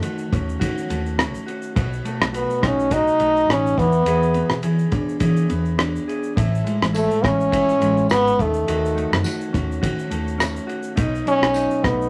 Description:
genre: indie pop, bedroom pop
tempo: 104 BPM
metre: 4/4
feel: swing 55% on 16ths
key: unclear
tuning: A4 = 441 Hz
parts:
  - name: clear French horn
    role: melody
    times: 0.0-12.1 s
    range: A3 to D#4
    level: -21 LUFS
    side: equal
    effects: none
  - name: mellow electric guitar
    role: accompaniment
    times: 0.0-12.1 s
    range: A2 to G#4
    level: -28 LUFS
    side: equal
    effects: warbly pitch drift
  - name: vintage muted fingered electric bass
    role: bass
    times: 0.0-12.1 s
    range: G#1 to E3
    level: -27 LUFS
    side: equal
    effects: none
  - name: cloth-damped thuddy drum kit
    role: drums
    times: 0.0-12.1 s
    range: kick drum, ride cymbal, rim click, shaker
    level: -27 LUFS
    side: equal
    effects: none
  - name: tambourine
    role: percussion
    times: 6.9-11.7 s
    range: none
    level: -40 LUFS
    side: equal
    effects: none
room: moderate studio reverb, RT60 0.5 s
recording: none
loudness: -20 LUFS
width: mono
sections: 0.0-12.1 A section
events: none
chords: 0.0 D#m7b5; 1.8 B7; 3.8 E7; 6.4 Amaj7; 8.4 D#m7b5; 11.0 B7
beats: 0.03 0.61 1.18 | 1.76 2.34 2.91 3.49 | 4.07 4.64 5.22 5.79 | 6.37 6.95 7.52 8.10 | 8.68 9.25 9.83 10.40 | 10.98 11.56

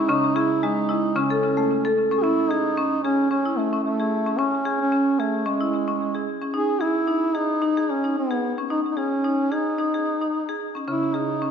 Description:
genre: world meditative, meditative tuned percussion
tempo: 111 BPM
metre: 4/4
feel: swing 55% on 16ths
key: C# hirajoshi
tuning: A4 = 439 Hz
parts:
  - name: mellow duduk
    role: melody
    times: 0.0-11.5 s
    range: G#3 to G#4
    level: -23 LUFS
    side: right 1 dB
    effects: ping-pong delay
  - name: marimba with hard mallets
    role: arpeggios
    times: 0.0-11.5 s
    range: C#3 to A4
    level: -24 LUFS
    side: left 1 dB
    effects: ping-pong delay
room: wet scoring stage reverb, RT60 1.9 s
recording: none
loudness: -20 LUFS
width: side -7 dB against mid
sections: 0.0-2.2 A section; 2.2-11.5 B section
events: none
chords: 0.1 C#m; 1.2 A/C#; 2.2 C#m; 6.5 G#5; 10.9 C#m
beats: | 0.09 0.62 1.16 1.69 | 2.23 2.77 3.31 3.84 | 4.38 4.92 5.46 6.00 | 6.54 7.08 7.62 8.17 | 8.71 9.25 9.79 10.34 | 10.88 11.42

